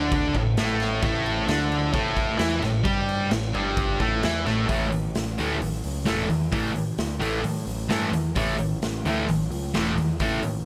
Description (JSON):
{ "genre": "garage rock duo or trio", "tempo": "131 BPM", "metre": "4/4", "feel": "straight", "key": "unclear", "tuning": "A4 = 440 Hz", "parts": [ { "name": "thick fuzz guitar", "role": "riff", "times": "0.0-10.4 s", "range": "G2 to G4", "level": "-26 LUFS", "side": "equal", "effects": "distortion" }, { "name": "growling picked electric bass", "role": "bass", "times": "0.0-10.6 s", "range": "E1 to A2", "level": "-32 LUFS", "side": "equal", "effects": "overdrive, tube saturation" }, { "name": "raw garage drum kit", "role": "drums", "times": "0.1-10.5 s", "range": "crash cymbal, hi-hat, kick drum, snare drum", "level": "-31 LUFS", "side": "equal", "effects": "none" } ], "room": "light reverb", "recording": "none", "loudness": "-25 LUFS", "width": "mono", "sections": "0.0-4.7 A section; 4.7-10.7 B section", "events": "none", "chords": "0.0 A5", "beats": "0.12 0.57 | 1.03 1.48 1.94 2.40 | 2.85 3.31 3.77 4.22 | 4.68 5.14 5.60 6.06 | 6.52 6.98 7.44 7.90 | 8.36 8.82 9.28 9.74 | 10.20" }